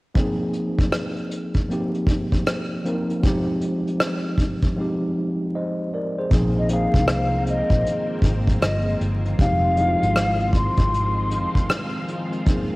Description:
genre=lo-fi hip hop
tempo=78 BPM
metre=4/4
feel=swing 65% on 16ths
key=unclear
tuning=A4 = 440 Hz
part: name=tine electric piano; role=accompaniment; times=0.1-12.8 s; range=F3 to Eb5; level=-25 LUFS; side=equal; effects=overdrive, fast stereo tremolo, cassette tape, low-pass filter
part: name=vintage brush drum kit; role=drums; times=0.2-12.7 s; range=hi-hat, kick drum, rim click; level=-22 LUFS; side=equal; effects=vintage 12-bit sampler grit, cassette tape
part: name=string machine, violins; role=sustained chords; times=6.3-12.8 s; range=Eb3 to F4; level=-31 LUFS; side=equal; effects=ensemble chorus, low-pass filter, cassette tape
part: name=vintage muted fingered electric bass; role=bass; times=6.3-11.5 s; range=F1 to C2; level=-23 LUFS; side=equal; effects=transformer saturation
part: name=breathy mellow concert flute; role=melody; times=6.6-11.7 s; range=Eb5 to C6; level=-24 LUFS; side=left 2 dB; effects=low-pass filter, cassette tape
room=light reverb, studio reverb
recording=home recording on cassette, vinyl crackle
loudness=-19 LUFS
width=side -22 dB against mid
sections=0.2-6.3 A section; 6.3-12.8 B section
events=break 4.8-6.3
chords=0.2 Bb9sus4; 3.2 Fm7; 6.3 Bb9sus4; 9.4 Fm7

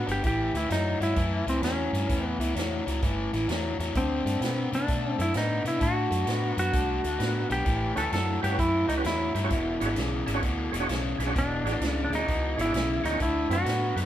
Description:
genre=electric blues shuffle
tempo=130 BPM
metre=4/4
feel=swing 66% on 8ths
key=A mixolydian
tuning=A4 = 440 Hz
part: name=clean lap steel guitar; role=melody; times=0.0-13.9 s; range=C4 to A4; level=-29 LUFS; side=equal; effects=none
part: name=biting overdriven guitar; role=riff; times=0.0-14.1 s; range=E2 to B3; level=-30 LUFS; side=left 2 dB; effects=none
part: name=vintage muted fingered electric bass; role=bass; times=0.0-14.1 s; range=E1 to C3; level=-30 LUFS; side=equal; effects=none
part: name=swinging big-band drum kit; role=drums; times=0.1-14.0 s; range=hi-hat, kick drum, snare drum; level=-33 LUFS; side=right 1 dB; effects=none
part: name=percussive tonewheel organ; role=accompaniment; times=8.0-14.1 s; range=C4 to E5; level=-34 LUFS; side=right 4 dB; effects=slow rotary speaker, overdrive, chorus vibrato
room=wet stone room reverb, RT60 0.9 s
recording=band playing live in one room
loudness=-24 LUFS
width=side -12 dB against mid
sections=0.0-14.1 A section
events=none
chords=0.2 A6; 3.9 D6; 7.7 A13; 9.5 E13; 13.2 D13

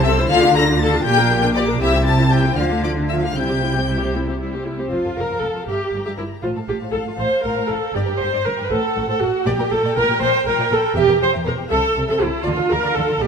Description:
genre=quick classical-period movement for string orchestra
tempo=79 BPM (dotted quarters)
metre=6/8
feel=straight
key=F major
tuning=A4 = 445 Hz
part: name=rich studio violin section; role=second line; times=0.0-13.3 s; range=F4 to Bb5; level=-25 LUFS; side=left 6 dB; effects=none
part: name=rich chamber viola section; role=accompaniment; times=0.0-13.3 s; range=F3 to C5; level=-19 LUFS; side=right 1 dB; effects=none
part: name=clear chamber double bass section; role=bass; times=0.0-13.3 s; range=E1 to D2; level=-24 LUFS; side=right 2 dB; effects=none
part: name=rich chamber cello section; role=bass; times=0.0-13.3 s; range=E2 to D3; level=-24 LUFS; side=equal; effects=none
part: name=rich chamber violin section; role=melody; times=0.1-13.3 s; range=F#5 to Bb6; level=-28 LUFS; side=left 5 dB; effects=none
room=moderate scoring stage reverb, RT60 1.9 s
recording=none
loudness=-16 LUFS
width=side -6 dB against mid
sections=0.0-4.9 A section; 4.9-13.3 A section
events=none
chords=0.3 Dm; 1.0 Gm/Bb; 1.8 C; 2.6 Dm; 3.3 C; 4.9 F; 5.7 Edim/G (rootless); 6.4 F/A; 8.0 Gm; 8.7 F#m/A; 9.5 Gm/Bb; 11.0 Edim; 11.7 Am; 12.5 Dm

